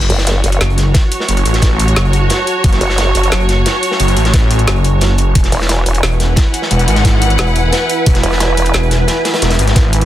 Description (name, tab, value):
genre	dark technical drum and bass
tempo	177 BPM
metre	4/4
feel	straight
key	F# minor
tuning	A4 = 440 Hz
part	deep dark ambient pad	sustained chords	0.0-10.1 s	E4 to A5	-22 LUFS	equal	chorus, built-in reverb, sidechain pumping
part	wide detuned saw bass	bass	0.0-10.1 s	E1 to A1	-13 LUFS	equal	chorus, tube saturation
part	crunchy breakbeat drum kit	drums	0.0-10.0 s	hi-hat, snare drum	-21 LUFS	equal	high-pass filter on hats, high-pass filter on snare, high-pass filter on room
part	drum and bass drum kit	drums	0.0-10.1 s	hi-hat, snare drum	-19 LUFS	left 1 dB	none
part	warm symphonic string section	texture	0.0-10.1 s	E4 to F#5	-19 LUFS	right 1 dB	sidechain pumping
part	vowel-sweep wobble bass	bass	0.1-0.6, 2.8-3.3, 5.5-6.0, 8.2-8.7 s	E1 to F#1	-14 LUFS	equal	chorus
part	electronic kick drum	drums	0.9-9.8 s	none	-12 LUFS	equal	overdrive
room	small room reverb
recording	dense, heavily limited modern master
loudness	-10 LUFS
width	side -13 dB against mid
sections	0.0-10.1 A section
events	none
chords	0.0 F#madd9; 5.4 Eadd9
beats	0.27 0.61 0.95 | 1.29 1.62 1.96 2.30 | 2.64 2.98 3.32 3.66 | 4.00 4.34 4.68 5.01 | 5.35 5.69 6.03 6.37 | 6.71 7.05 7.39 7.73 | 8.06 8.40 8.74 9.08 | 9.42 9.76